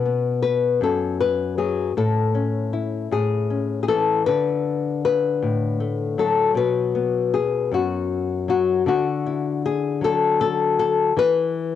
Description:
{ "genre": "folk, solo fingerstyle acoustic guitar", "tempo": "52 BPM (dotted quarters)", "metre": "6/8", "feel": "straight", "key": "unclear", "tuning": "A4 = 439 Hz", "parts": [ { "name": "nylon-string guitar", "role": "solo", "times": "0.0-11.8 s", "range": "F#2 to B4", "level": "-19 LUFS", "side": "left 5 dB", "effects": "cassette tape" } ], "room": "light reverb", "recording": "home recording on cassette", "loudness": "-19 LUFS", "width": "side -10 dB against mid", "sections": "0.0-8.9 A section; 8.9-11.8 B section", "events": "none", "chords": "0.0 B5; 2.0 A; 4.3 D; 6.6 B5; 8.9 Dadd9; 11.2 E5" }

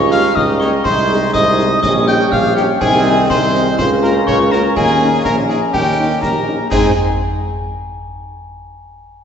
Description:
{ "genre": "military-style march for wind band", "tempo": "123 BPM", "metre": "2/4", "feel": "straight", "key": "Ab major", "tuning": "A4 = 439 Hz", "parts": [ { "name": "clear euphonium", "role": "second line", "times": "0.0-6.5 s", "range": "Db4 to G4", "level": "-22 LUFS", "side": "right 3 dB", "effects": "none" }, { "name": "glockenspiel with soft plastic mallets", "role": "second line", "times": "0.0-7.0 s", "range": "G5 to G6", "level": "-22 LUFS", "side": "left 4 dB", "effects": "none" }, { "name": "mellow hollow wooden piccolo", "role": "second line", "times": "0.0-7.0 s", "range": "G5 to G6", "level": "-20 LUFS", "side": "left 2 dB", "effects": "none" }, { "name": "warm woodwind section", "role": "second line", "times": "0.0-6.9 s", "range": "Db4 to Eb5", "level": "-25 LUFS", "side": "equal", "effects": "none" }, { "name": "clear trombone section", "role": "sustained chords", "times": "0.0-6.9 s", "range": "Ab2 to Eb4", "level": "-22 LUFS", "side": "equal", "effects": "none" }, { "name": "warm tuba", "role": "bass", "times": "0.0-6.9 s", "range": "Bb1 to Ab2", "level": "-17 LUFS", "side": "right 2 dB", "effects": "none" }, { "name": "warm cornet", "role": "melody", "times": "0.1-6.9 s", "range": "G4 to G5", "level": "-21 LUFS", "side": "right 1 dB", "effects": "none" }, { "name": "mellow French horn section", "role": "accompaniment", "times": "0.1-6.9 s", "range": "Ab3 to Ab4", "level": "-24 LUFS", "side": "left 3 dB", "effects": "none" }, { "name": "concert snare drum, concert bass drum and clash cymbals", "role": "drums", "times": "0.1-7.0 s", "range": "none", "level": "-24 LUFS", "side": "equal", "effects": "none" } ], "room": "wet concert hall reverb, RT60 2.2 s", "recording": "recorded in a church or concert hall, nothing above 7.9 kHz", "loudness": "-12 LUFS", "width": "side -7 dB against mid", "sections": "0.0-6.7 A section", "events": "none", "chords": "0.0 Eb7/Db; 0.9 Ab/C; 1.8 Eb7/Bb; 2.8 Ab/C; 3.8 Bbm/Db; 4.8 Eb7sus4; 6.7 Ab" }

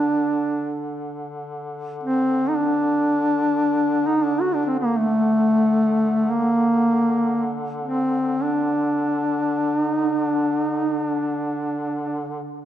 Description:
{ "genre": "caucasian folk, Caucasian lament", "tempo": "free time", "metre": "none", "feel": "none", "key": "unclear", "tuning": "A4 = 440 Hz", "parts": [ { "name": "mellow duduk", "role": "melody", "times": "0.0-12.4 s", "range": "A3 to F#4", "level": "-19 LUFS", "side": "equal", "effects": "none" }, { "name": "clear duduk", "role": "drone", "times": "0.0-12.5 s", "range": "D3", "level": "-30 LUFS", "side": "left 1 dB", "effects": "none" } ], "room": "moderate concert hall reverb, RT60 1.9 s", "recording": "dark, warm production", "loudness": "-19 LUFS", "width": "side -11 dB against mid", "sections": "0.0-12.7 A section", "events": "none", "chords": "none" }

